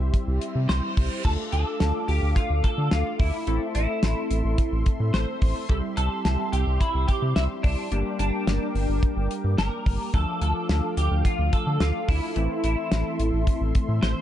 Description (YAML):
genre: synth-pop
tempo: 108 BPM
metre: 4/4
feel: straight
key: D minor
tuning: A4 = 440 Hz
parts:
  - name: funky polysynth comp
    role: accompaniment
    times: 0.0-14.2 s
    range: E3 to A4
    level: -32 LUFS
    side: left 1 dB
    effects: chorus
  - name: warm analog pad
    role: sustained chords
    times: 0.0-14.2 s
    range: G4 to D6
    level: -36 LUFS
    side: equal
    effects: chorus
  - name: round analog bass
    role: bass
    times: 0.0-14.1 s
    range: G1 to D3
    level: -24 LUFS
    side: equal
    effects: none
  - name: damped 70s drum kit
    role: drums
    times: 0.1-14.2 s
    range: crash cymbal, hi-hat, kick drum, snare drum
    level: -25 LUFS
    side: equal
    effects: none
  - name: reverse cymbal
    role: sound effects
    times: 0.4-1.2 s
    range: none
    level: -40 LUFS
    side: right 6 dB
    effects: none
  - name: twelve-string electric guitar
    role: melody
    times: 0.7-14.2 s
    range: D4 to C5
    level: -30 LUFS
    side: equal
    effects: ensemble chorus
room: small room reverb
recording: dark, warm production, nothing above 10.9 kHz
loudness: -22 LUFS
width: side -11 dB against mid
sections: 0.0-1.2 A section; 1.2-14.2 B section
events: reverse cymbal 0.4-1.2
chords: 0.0 C; 1.2 Dm; 3.5 Am; 5.7 C; 7.9 Gm; 10.1 Dm; 12.4 Am